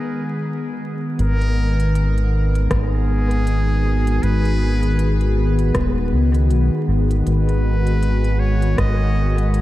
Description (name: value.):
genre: ambient dub.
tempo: 79 BPM.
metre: 4/4.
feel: swing 58% on 16ths.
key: G# minor.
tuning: A4 = 438 Hz.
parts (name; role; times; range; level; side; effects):
trumpet with metal mute; melody; 0.0-9.5 s; G#4 to D#5; -29 LUFS; equal; dub echo.
warbly tape-like pad; sustained chords; 0.0-9.6 s; D#3 to G#4; -22 LUFS; equal; chorus, built-in reverb, phaser.
round analog bass; bass; 1.2-9.6 s; D#1 to C#2; -17 LUFS; equal; none.
organic electronic drum kit; drums; 1.2-9.6 s; hi-hat, rim click; -31 LUFS; equal; dub echo.
electronic kick drum; drums; 2.7-9.0 s; none; -24 LUFS; equal; none.
room: light reverb, digital ambience.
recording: vinyl crackle.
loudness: -16 LUFS.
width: side -15 dB against mid.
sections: 0.0-1.2 A section; 1.2-9.6 B section.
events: none.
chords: 0.0 G#m7.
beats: 0.43 | 1.19 1.95 2.71 3.47 | 4.23 4.99 5.75 6.51 | 7.27 8.03 8.79 9.55.